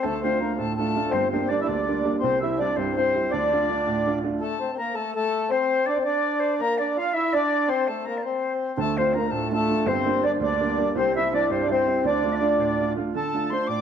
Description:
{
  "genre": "celtic folk, Celtic jig",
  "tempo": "110 BPM (dotted quarters)",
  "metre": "6/8",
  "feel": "straight",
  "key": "D minor",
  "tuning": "A4 = 440 Hz",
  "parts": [
    { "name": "mellow accordion", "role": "melody", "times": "0.0-13.8 s", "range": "A3 to D5", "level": "-24 LUFS", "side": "left 1 dB", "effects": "none" },
    { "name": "bright wooden flute", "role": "second line", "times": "0.0-13.8 s", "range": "C5 to D6", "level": "-29 LUFS", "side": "left 4 dB", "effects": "none" },
    { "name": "clear upright piano", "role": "accompaniment", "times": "0.0-4.4, 8.8-13.8 s", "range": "G1 to F4", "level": "-26 LUFS", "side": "right 4 dB", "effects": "none" }
  ],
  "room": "wet recital hall reverb, RT60 1.4 s",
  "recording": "dark, warm production",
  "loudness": "-21 LUFS",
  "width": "side -8 dB against mid",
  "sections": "0.0-4.4 A section; 4.4-13.1 A section",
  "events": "none",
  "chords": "0.0 Dm; 1.1 Gm; 2.2 C; 3.3 Dm; 4.4 N.C.; 8.8 Dm; 9.9 Gm; 10.9 C; 12.0 Dm"
}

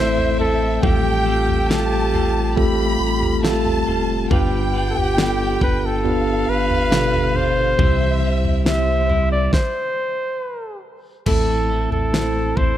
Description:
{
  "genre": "pop ballad",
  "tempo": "69 BPM",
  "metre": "4/4",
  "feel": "straight",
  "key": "C major",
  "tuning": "A4 = 440 Hz",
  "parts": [
    { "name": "breathy flugelhorn", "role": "melody", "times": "0.0-12.8 s", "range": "G4 to E5", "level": "-22 LUFS", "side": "equal", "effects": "none" },
    { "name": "warm symphonic violin section", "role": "second line", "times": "0.0-9.5 s", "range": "C5 to B5", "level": "-26 LUFS", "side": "equal", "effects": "digital delay" },
    { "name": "mellow tine electric piano", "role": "accompaniment", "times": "0.0-12.8 s", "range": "G2 to D5", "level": "-22 LUFS", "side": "equal", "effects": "medium stereo tremolo" },
    { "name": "twelve-string electric guitar", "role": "arpeggios", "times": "0.0-12.8 s", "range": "A2 to C5", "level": "-30 LUFS", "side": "left 1 dB", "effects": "none" },
    { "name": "sub bass with octave", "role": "bass", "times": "0.0-12.8 s", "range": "F1 to C2", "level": "-23 LUFS", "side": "equal", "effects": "none" },
    { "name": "smooth R&B drum kit", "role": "drums", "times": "0.2-12.8 s", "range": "crash cymbal, kick drum, snare drum, toms", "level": "-22 LUFS", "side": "equal", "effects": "none" }
  ],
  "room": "light reverb",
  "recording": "none",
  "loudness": "-16 LUFS",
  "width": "side -12 dB against mid",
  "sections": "0.0-11.3 A section; 11.3-12.8 A section",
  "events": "stop 9.5-11.3",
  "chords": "0.0 Am; 0.8 Fadd9/A; 4.3 G7; 7.8 C; 11.3 Am"
}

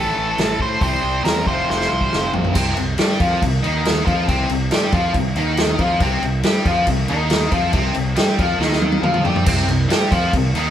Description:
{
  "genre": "blues rock power trio and southern rock",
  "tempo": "139 BPM",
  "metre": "4/4",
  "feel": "straight",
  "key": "unclear",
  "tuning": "A4 = 440 Hz",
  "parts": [
    { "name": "octave-fuzz lead guitar", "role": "melody", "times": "0.0-2.3 s", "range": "A4 to C5", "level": "-22 LUFS", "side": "right 1 dB", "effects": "distortion" },
    { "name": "overdriven electric guitar", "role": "riff", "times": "0.0-10.7 s", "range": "F2 to G4", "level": "-20 LUFS", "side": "left 1 dB", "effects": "none" },
    { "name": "fuzz fingered electric bass", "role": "bass", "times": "0.0-10.7 s", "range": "F1 to A2", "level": "-23 LUFS", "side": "equal", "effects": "overdrive" },
    { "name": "vintage drum kit", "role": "drums", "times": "0.4-10.6 s", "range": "crash cymbal, hi-hat, kick drum, snare drum, toms", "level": "-20 LUFS", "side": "equal", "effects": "none" }
  ],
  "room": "moderate stone room reverb, RT60 1.5 s",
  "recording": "band playing live in one room",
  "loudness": "-16 LUFS",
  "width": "side -10 dB against mid",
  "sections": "0.0-2.5 A section; 2.5-9.5 B section; 9.5-10.7 B section",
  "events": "drum fill 1.7-2.5, 8.6-9.5",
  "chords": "0.0 A5; 0.8 C; 1.5 F5; 2.5 C5"
}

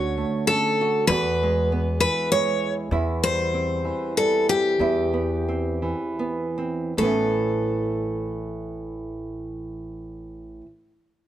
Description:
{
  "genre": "folk",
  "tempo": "74-99 BPM",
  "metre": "3/4",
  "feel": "straight",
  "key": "A major",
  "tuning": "A4 = 441 Hz",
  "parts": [
    { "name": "picked steel-string acoustic guitar", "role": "melody", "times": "0.0-10.6 s", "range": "G4 to C#5", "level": "-23 LUFS", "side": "left 1 dB", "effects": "none" },
    { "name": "nylon-string guitar", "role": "accompaniment", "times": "0.0-10.7 s", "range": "E2 to F#4", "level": "-27 LUFS", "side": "right 3 dB", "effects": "none" },
    { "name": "upright bass", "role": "bass", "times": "0.0-10.6 s", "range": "A1 to E2", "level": "-30 LUFS", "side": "equal", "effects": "none" }
  ],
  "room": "light reverb",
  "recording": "none",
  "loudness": "-21 LUFS",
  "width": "side -12 dB against mid",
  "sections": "0.0-7.0 A section; 7.0-11.3 B section",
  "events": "slowing down 2.9-7.0",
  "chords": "0.0 Dmaj7; 1.1 Eadd9; 2.9 Cmaj7/E; 7.0 Aadd9"
}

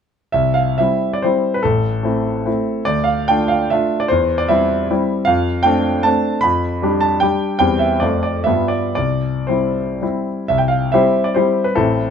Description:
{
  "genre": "classical, romantic triple-time dance for piano with dotted rhythms",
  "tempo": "110-170 BPM",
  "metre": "3/4",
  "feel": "rubato",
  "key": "C major",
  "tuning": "A4 = 441 Hz",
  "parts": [
    { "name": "clear grand piano", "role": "solo", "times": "0.3-12.1 s", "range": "A1 to B5", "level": "-15 LUFS", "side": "equal", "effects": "none" }
  ],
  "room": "light reverb",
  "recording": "close, detailed microphones",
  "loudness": "-15 LUFS",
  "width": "side -7 dB against mid",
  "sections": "0.3-10.5 A section; 10.5-12.1 A section",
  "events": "none",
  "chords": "0.3 C; 1.6 Am; 2.9 Dm; 4.1 C/E; 5.3 Dm7/F; 6.4 G7/F; 7.6 C/E; 8.0 Dm7/F; 8.5 G7; 9.0 C"
}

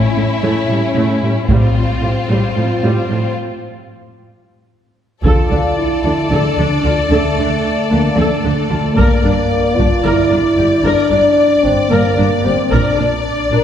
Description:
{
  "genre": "cinematic, epic orchestral film score",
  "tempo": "224 BPM (eighths)",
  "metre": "7/8",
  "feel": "straight",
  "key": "D minor",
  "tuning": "A4 = 440 Hz",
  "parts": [
    { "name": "rich symphonic violin section", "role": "melody", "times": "0.0-13.6 s", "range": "E4 to D5", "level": "-22 LUFS", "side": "left 2 dB", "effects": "none" },
    { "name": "warm symphonic violin section", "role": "second line", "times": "0.0-13.6 s", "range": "C4 to D5", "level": "-22 LUFS", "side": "left 2 dB", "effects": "none" },
    { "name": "warm symphonic viola section", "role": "accompaniment", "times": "0.2-13.6 s", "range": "F3 to Bb4", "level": "-22 LUFS", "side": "equal", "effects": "none" },
    { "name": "warm symphonic cello section", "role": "bass", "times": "0.2-13.6 s", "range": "G2 to D3", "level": "-19 LUFS", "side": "right 2 dB", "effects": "none" },
    { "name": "rich symphonic double bass section", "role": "bass", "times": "1.5-1.7, 5.2-13.6 s", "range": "G1 to D2", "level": "-20 LUFS", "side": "right 1 dB", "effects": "none" },
    { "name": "taiko ensemble", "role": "drums", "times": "1.5-13.6 s", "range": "none", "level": "-18 LUFS", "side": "equal", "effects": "none" },
    { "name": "mellow French horn section", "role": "sustained chords", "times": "5.2-13.6 s", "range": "A3 to Bb4", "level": "-15 LUFS", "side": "left 1 dB", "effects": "none" }
  ],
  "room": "wet concert hall reverb, RT60 2.0 s",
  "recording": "heard from further back in the room",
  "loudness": "-12 LUFS",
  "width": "side -9 dB against mid",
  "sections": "0.0-5.2 A section; 5.2-13.6 B section",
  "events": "build-up 0.0-5.2; break 3.4-5.2",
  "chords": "0.0 A; 1.5 Fadd9/A; 3.4 N.C.; 5.2 Dm; 9.0 Gm; 12.7 Bb"
}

